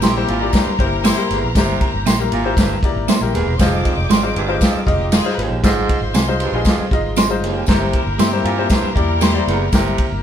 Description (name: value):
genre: uptempo 1960s-style soul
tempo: 118 BPM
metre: 4/4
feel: straight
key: unclear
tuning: A4 = 441 Hz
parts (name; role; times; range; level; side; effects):
- warm horn section; second line; 0.0-9.6 s; Ab3 to C5; -26 LUFS; left 2 dB; none
- warm studio string section; second line; 0.0-10.2 s; C4 to D6; -27 LUFS; left 1 dB; none
- clean electric guitar; stabs; 0.0-9.3 s; Ab3 to C5; -21 LUFS; right 5 dB; phaser
- vintage muted fingered electric bass; bass; 0.0-10.2 s; Eb1 to G2; -22 LUFS; equal; none
- vintage drum kit; drums; 0.0-10.1 s; kick drum, ride cymbal, snare drum; -18 LUFS; equal; none
- tambourine; percussion; 0.0-9.8 s; none; -31 LUFS; left 5 dB; none
- clear upright piano; accompaniment; 0.2-10.2 s; G3 to Eb5; -22 LUFS; left 4 dB; none
- growling baritone saxophone; riff; 0.3-10.1 s; Eb2 to C3; -24 LUFS; right 6 dB; none
room: light reverb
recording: band playing live in one room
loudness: -14 LUFS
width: side -9 dB against mid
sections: 0.0-10.2 A section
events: none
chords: 0.0 C7/G; 3.6 Fm7; 5.6 Ab6; 7.7 C7